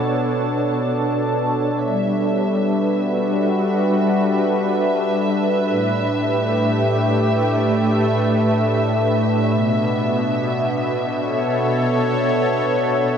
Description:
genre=ambient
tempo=free time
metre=none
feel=none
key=unclear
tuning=A4 = 440 Hz
part: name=warm analog pad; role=sustained chords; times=0.0-13.2 s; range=A2 to C#5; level=-17 LUFS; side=equal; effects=chorus, tremolo
part: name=dark studio violin section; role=texture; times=0.0-13.2 s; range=E5 to A5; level=-26 LUFS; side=equal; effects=none
room=wet cathedral reverb, RT60 6.0 s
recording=in a vast, echoing space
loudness=-17 LUFS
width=side -7 dB against mid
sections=0.0-1.8 A section; 1.8-13.2 B section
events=filter sweep on analog synth pad 0.0-1.8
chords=0.0 Bm7; 1.8 Gmaj7; 5.7 A7sus4; 9.5 Bm7

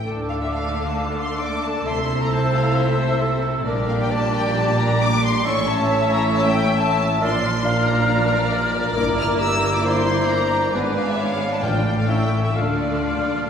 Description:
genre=classical, dramatic, fast romantic movement for symphony orchestra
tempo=135 BPM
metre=4/4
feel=rubato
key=D minor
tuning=A4 = 440 Hz
part: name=clear symphonic violin section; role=melody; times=0.0-13.5 s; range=D5 to F6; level=-26 LUFS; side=left 3 dB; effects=none
part: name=clear clarinet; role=second line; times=0.1-13.5 s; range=G4 to F5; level=-27 LUFS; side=left 1 dB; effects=none
part: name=dark cor anglais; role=second line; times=0.1-13.5 s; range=A4 to D5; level=-30 LUFS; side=right 1 dB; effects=none
part: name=flute section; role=second line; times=0.1-13.5 s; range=D6 to F6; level=-28 LUFS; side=left 1 dB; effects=none
part: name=rich symphonic violin section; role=second line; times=0.1-13.5 s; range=E4 to E5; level=-29 LUFS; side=left 2 dB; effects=none
part: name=rich symphonic viola section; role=accompaniment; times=0.1-13.5 s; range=F3 to E4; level=-27 LUFS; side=equal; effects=none
part: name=dark French horn section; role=sustained chords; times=0.1-12.7 s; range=E3 to F4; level=-29 LUFS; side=left 2 dB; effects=none
part: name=dark studio double bass section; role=bass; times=0.1-13.5 s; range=G1 to D2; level=-25 LUFS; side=right 2 dB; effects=none
part: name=rich symphonic cello section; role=bass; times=0.1-13.5 s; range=G2 to D3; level=-27 LUFS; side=right 2 dB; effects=none
part: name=timpani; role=percussion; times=11.6-13.5 s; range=A2 to D3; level=-28 LUFS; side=left 2 dB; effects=none
room=wet concert hall reverb, RT60 1.8 s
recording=recorded in a church or concert hall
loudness=-18 LUFS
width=side -7 dB against mid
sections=0.1-13.5 A section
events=timpani fill 12.6-13.5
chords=0.1 Dm; 1.9 Am/C; 3.7 Gm/Bb; 5.5 A; 7.2 Bb; 9.0 Em7b5/G; 10.7 G#dim; 11.6 Dm/A; 12.1 A7; 12.6 Dm

